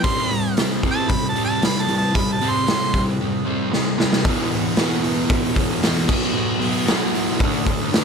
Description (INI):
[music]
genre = garage rock duo or trio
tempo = 114 BPM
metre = 4/4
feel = straight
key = E minor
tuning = A4 = 440 Hz
[part]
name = clear harmonica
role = melody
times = 0.0-3.0 s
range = A5 to C6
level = -23 LUFS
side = right 2 dB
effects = overdrive
[part]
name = fuzz guitar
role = riff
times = 0.0-8.0 s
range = E2 to D4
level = -21 LUFS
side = equal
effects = distortion
[part]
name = raw garage drum kit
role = drums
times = 0.0-8.0 s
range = crash cymbal, hi-hat, kick drum, snare drum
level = -21 LUFS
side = equal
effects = none
[sound]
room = light reverb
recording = none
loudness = -18 LUFS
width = side -6 dB against mid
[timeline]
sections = 0.0-4.3 A section; 4.3-8.0 B section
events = drum fill 3.7-4.3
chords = 0.0 C5; 4.3 E5; 6.1 B5; 7.4 D5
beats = | 0.04 0.57 1.10 1.62 | 2.15 2.67 3.20 3.73 | 4.25 4.78 5.30 5.83 | 6.35 6.88 7.40 7.92